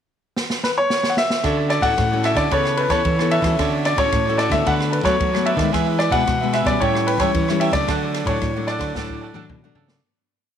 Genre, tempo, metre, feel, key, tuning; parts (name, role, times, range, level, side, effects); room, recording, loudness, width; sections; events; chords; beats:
samba and choro; 112 BPM; 4/4; straight; D major; A4 = 441 Hz
open jazz drum kit; drums; 0.4-10.0 s; kick drum, ride cymbal, rim click, snare drum, toms; -25 LUFS; right 1 dB
warm concert grand piano; melody; 0.6-9.4 s; B4 to F#5; -20 LUFS; left 1 dB
cavaquinho; accompaniment; 1.4-10.0 s; D4 to A5; -27 LUFS; right 10 dB
nylon-string guitar; accompaniment; 1.4-10.0 s; A2 to A4; -26 LUFS; left 10 dB
nylon-string guitar; bass; 1.4-10.0 s; A2 to F#3; -23 LUFS; right 1 dB
moderate echo chamber reverb, RT60 1.6 s, studio reverb; 1960s-style stereo with parts hard left and right; -17 LUFS; side -8 dB against mid
0.0-1.4 pickup bar; 1.4-10.0 A section
drum fill 0.4-1.4, 9.0-10.0; fade-out 7.9-10.0
0.0 N.C.; 1.4 Dmaj7; 2.5 Aadd9/C#; 3.6 Dmaj7; 4.7 Bm7/D; 5.7 E; 6.8 A7; 7.9 D
0.37 0.91 | 1.44 1.98 2.52 3.06 | 3.60 4.13 4.67 5.21 | 5.74 6.28 6.82 7.35 | 7.89 8.43 8.96 9.50